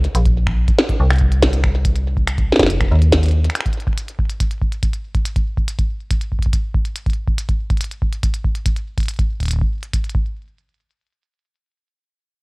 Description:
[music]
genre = IDM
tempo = 141 BPM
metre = 4/4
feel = straight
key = unclear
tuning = A4 = 441 Hz
[part]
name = metallic FM bass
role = bass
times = 0.0-3.5 s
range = F1 to Eb2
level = -15 LUFS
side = equal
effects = none
[part]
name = glitchy drum kit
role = drums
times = 0.0-10.1 s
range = finger snaps, hi-hat, snare drum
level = -20 LUFS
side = equal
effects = studio reverb, ping-pong delay
[part]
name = electronic kick drum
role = drums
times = 0.3-10.2 s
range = none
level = -19 LUFS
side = equal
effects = studio reverb
[sound]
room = digital ambience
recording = worn, warbling old tape, cassette tape, warbly pitch drift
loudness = -16 LUFS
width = side -27 dB against mid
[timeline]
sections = 0.0-10.4 A section; 10.4-12.4 B section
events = filter sweep on FM bass 0.0-3.6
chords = none

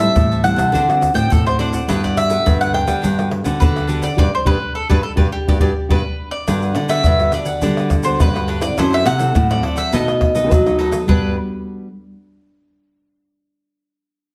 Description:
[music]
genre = samba and choro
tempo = 104 BPM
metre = 4/4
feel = straight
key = G major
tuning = A4 = 440 Hz
[part]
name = mandolin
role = melody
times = 0.0-11.4 s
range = G4 to G5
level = -22 LUFS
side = equal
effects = plate reverb
[part]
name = cavaquinho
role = accompaniment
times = 0.0-11.3 s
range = D4 to A5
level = -30 LUFS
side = equal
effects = none
[part]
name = nylon-string guitar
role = accompaniment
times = 0.0-11.9 s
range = A2 to A4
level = -26 LUFS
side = equal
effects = none
[part]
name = nylon-string guitar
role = bass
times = 0.0-11.4 s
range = F#2 to G3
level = -23 LUFS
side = equal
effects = none
[part]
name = tube shaker, surdo, pandeiro and tamborim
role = percussion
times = 0.2-11.2 s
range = none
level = -21 LUFS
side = equal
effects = none
[sound]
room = wet large studio reverb, RT60 1.0 s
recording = heard from further back in the room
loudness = -17 LUFS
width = mono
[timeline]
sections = 0.0-6.5 A section; 6.5-11.1 B section; 11.1-13.4 C section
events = band accent 4.2-6.5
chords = 0.0 Am7; 0.7 D7; 1.9 Gmaj9; 8.8 F#m7b5; 9.9 B7; 11.1 Gmaj9

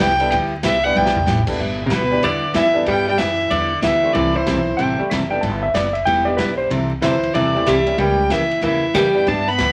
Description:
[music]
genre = country, western swing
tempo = 188 BPM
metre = 4/4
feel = swing 64% on 8ths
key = G major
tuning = A4 = 444 Hz
[part]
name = rich fiddle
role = melody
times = 0.0-4.8, 7.0-9.7 s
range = Bb4 to B5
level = -22 LUFS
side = equal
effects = none
[part]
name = picked steel-string acoustic guitar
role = accompaniment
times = 0.0-9.7 s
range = C3 to A4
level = -26 LUFS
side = equal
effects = none
[part]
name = upright bass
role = bass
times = 0.0-9.7 s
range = E1 to G2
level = -29 LUFS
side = equal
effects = none
[part]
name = tack piano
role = accompaniment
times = 0.2-9.3 s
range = G3 to A4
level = -27 LUFS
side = equal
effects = none
[part]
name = swinging big-band drum kit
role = drums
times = 0.2-9.7 s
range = crash cymbal, hi-hat, kick drum, ride cymbal, snare drum, toms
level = -31 LUFS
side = equal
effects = none
[part]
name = archtop guitar, miked and amplified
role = second line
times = 1.9-4.8, 7.0-9.7 s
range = B2 to D4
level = -22 LUFS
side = equal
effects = none
[part]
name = clean lap steel guitar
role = second line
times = 4.8-6.7 s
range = B4 to A5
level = -22 LUFS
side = equal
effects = none
[sound]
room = wet small room reverb, RT60 0.5 s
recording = vinyl crackle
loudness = -18 LUFS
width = mono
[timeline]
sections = 0.0-1.6 A section; 1.6-9.7 B section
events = fiddle solo 0.0-1.6; drum fill 1.0-1.3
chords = 0.0 G6; 4.1 C6; 5.4 G6; 6.7 C6; 8.0 C#dim7

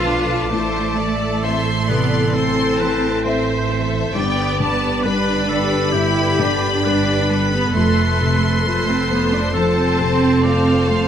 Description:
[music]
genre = cinematic, emotional film score for orchestra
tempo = 67 BPM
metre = 4/4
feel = rubato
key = A minor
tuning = A4 = 441 Hz
[part]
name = rich studio violin section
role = melody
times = 0.0-11.1 s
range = E5 to C6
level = -24 LUFS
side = left 3 dB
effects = none
[part]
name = rich studio violin section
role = second line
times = 0.0-11.1 s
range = A4 to E5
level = -28 LUFS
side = left 2 dB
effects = none
[part]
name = warm oboe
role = second line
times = 0.0-11.1 s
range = G4 to D5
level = -26 LUFS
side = right 2 dB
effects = none
[part]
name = felt-muted upright piano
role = accompaniment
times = 0.0-11.1 s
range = D2 to F5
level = -23 LUFS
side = left 2 dB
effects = none
[part]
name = rich studio viola section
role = accompaniment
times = 0.0-11.1 s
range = G4 to D5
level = -28 LUFS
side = right 1 dB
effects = none
[part]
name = mellow French horn section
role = sustained chords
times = 0.0-11.1 s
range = D3 to A4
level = -24 LUFS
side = left 3 dB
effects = none
[part]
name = rich studio double bass section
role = bass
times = 0.0-11.1 s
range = F1 to B1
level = -23 LUFS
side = right 3 dB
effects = none
[part]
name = warm symphonic cello section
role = bass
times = 0.0-11.1 s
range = A3 to F4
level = -22 LUFS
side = right 3 dB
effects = none
[sound]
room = moderate scoring stage reverb, RT60 2.0 s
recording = none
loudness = -15 LUFS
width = side -9 dB against mid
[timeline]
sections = 0.0-11.1 A section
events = none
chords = 0.0 Dm; 0.5 Am; 4.1 G; 7.8 F

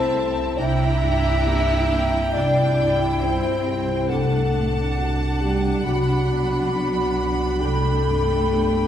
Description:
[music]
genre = cinematic, emotional film score for orchestra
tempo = 68 BPM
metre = 4/4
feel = rubato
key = unclear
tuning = A4 = 441 Hz
[part]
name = clear symphonic violin section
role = melody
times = 0.0-8.9 s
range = G5 to B5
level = -34 LUFS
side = left 1 dB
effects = none
[part]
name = clear symphonic violin section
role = second line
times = 0.0-8.9 s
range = E5 to G5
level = -33 LUFS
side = equal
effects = none
[part]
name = dark clarinet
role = second line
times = 0.0-8.9 s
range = D4 to E4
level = -31 LUFS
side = left 1 dB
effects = none
[part]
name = large flute ensemble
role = second line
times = 0.0-8.9 s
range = F#5 to B5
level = -30 LUFS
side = equal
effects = none
[part]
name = dark baby grand piano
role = accompaniment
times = 0.0-8.9 s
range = C2 to A4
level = -25 LUFS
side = equal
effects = none
[part]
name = warm studio viola section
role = accompaniment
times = 0.0-8.9 s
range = C4 to E4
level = -33 LUFS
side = right 1 dB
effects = none
[part]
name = mellow French horn section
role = sustained chords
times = 0.0-8.9 s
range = F#4 to E5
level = -24 LUFS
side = left 2 dB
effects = none
[part]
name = rich symphonic cello section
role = bass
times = 0.0-8.9 s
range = F#3 to E4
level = -29 LUFS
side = right 2 dB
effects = none
[part]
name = warm symphonic double bass section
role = bass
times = 0.0-8.9 s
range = C2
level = -26 LUFS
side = right 2 dB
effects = none
[sound]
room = wet recital hall reverb, RT60 1.5 s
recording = recorded in a church or concert hall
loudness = -19 LUFS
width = side -10 dB against mid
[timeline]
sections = 0.0-8.9 A section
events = none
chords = 0.0 Am/C; 0.6 Gm/C; 2.3 C; 4.1 D/C; 5.8 Bm/C; 7.6 G/C

